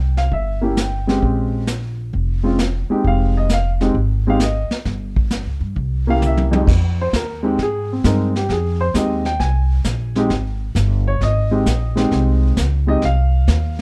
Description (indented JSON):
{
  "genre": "jazz piano trio",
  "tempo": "132 BPM",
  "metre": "4/4",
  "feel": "swing 68% on 8ths",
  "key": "F minor",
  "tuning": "A4 = 438 Hz",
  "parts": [
    { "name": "warm baby grand piano", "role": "melody", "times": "0.0-13.8 s", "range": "F2 to Ab5", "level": "-22 LUFS", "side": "equal", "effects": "none" },
    { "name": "upright bass", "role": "bass", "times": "0.0-13.8 s", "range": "F1 to Ab2", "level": "-21 LUFS", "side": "equal", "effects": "none" },
    { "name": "vintage brush drum kit", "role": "drums", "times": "0.2-13.8 s", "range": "brushed snare drum, crash cymbal, hi-hat, kick drum, snare drum, toms", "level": "-24 LUFS", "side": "equal", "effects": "none" }
  ],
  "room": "light reverb",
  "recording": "dark, warm production",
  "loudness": "-18 LUFS",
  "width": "mono",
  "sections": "0.0-6.7 A section; 6.7-13.8 B section",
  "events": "drum fill 6.2-6.7; grand piano solo 6.7-13.8",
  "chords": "0.0 C(b9); 1.2 Bbm9; 3.0 Fm7; 4.9 N.C.; 5.8 C7b9; 6.7 Fm7",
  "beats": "0.31 0.77 | 1.22 1.68 2.13 2.58 | 3.04 3.49 3.95 4.40 | 4.85 5.31 5.76 6.21 | 6.67 7.12 7.58 8.03 | 8.48 8.94 9.39 9.84 | 10.30 10.75 11.21 11.66 | 12.11 12.57 13.02 13.48"
}